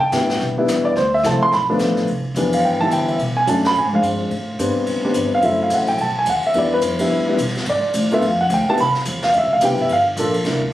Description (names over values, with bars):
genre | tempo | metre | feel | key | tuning
jazz piano trio | 215 BPM | 4/4 | swing 60% on 8ths | C major | A4 = 440 Hz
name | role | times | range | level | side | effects
dark baby grand piano | melody | 0.0-10.6 s | E3 to C6 | -16 LUFS | equal | none
upright bass | bass | 0.0-10.7 s | F#1 to D3 | -26 LUFS | equal | none
jazz brush drum kit | drums | 0.1-10.7 s | brushed snare drum, hi-hat, kick drum, ride cymbal, snare drum | -28 LUFS | equal | none
room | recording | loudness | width
light reverb | recorded on a phone in the room, studio reverb | -16 LUFS | side -14 dB against mid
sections
0.0-2.1 A section; 2.1-10.7 A section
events
grand piano solo 0.0-10.7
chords
0.0 Cmaj9 (rootless); 1.0 Dm7; 1.5 Bm7b5; 2.1 Cmaj9; 3.2 Bm7; 3.8 Bb9; 4.3 Am11; 5.4 F#m7b5; 6.0 B; 6.5 Em7; 7.7 G7sus2; 8.8 Cmaj9; 9.9 Gm7